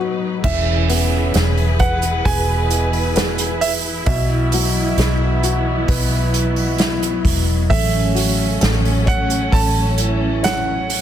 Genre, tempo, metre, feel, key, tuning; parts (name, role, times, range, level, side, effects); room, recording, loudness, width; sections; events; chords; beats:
pop ballad; 66 BPM; 4/4; straight; E major; A4 = 441 Hz
felt-muted upright piano; accompaniment; 0.0-11.0 s; B2 to C#5; -24 LUFS; left 7 dB
warm studio string section; sustained chords; 0.0-11.0 s; B2 to B4; -24 LUFS; left 1 dB
warm concert grand piano; melody; 0.4-11.0 s; E5 to A5; -24 LUFS; right 4 dB; tape echo
warm French horn section; second line; 0.4-10.9 s; B2 to E4; -27 LUFS; right 6 dB; tape echo
vintage muted fingered electric bass; bass; 0.4-11.0 s; E1 to B1; -19 LUFS; equal
unplugged drum kit; drums; 0.4-11.0 s; crash cymbal, hi-hat, kick drum, snare drum; -20 LUFS; right 1 dB
light reverb, small room ambience; dense, heavily limited modern master; -15 LUFS; side -10 dB against mid
0.4-11.0 A section
0.4 E; 4.1 Bsus4; 7.7 F#m/A
| 0.44 1.34 2.25 3.16 | 4.07 4.98 5.89 6.80 | 7.71 8.62 9.53 10.44